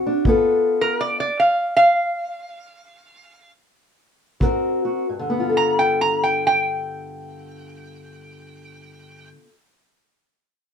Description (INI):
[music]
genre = acoustic country blues, solo or duo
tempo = 88-108 BPM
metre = 4/4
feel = swing 63% on 8ths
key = G mixolydian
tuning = A4 = 439 Hz
[part]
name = fingerpicked steel-string acoustic guitar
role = accompaniment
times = 0.0-9.5 s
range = G2 to Bb4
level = -21 LUFS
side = left 2 dB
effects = none
[part]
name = kick drum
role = drums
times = 0.3-0.4, 4.4-4.6 s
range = none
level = -21 LUFS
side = equal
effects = none
[part]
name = lap resonator guitar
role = melody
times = 0.8-9.3 s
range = Bb4 to Bb5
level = -18 LUFS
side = right 1 dB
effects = none
[sound]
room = light reverb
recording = minimal, uncompressed stereo recording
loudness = -17 LUFS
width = side -7 dB against mid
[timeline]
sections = 0.0-5.1 A section; 5.1-7.8 B section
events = slowing down 0.2-5.1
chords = 0.2 G9; 4.4 Ab9; 5.1 G9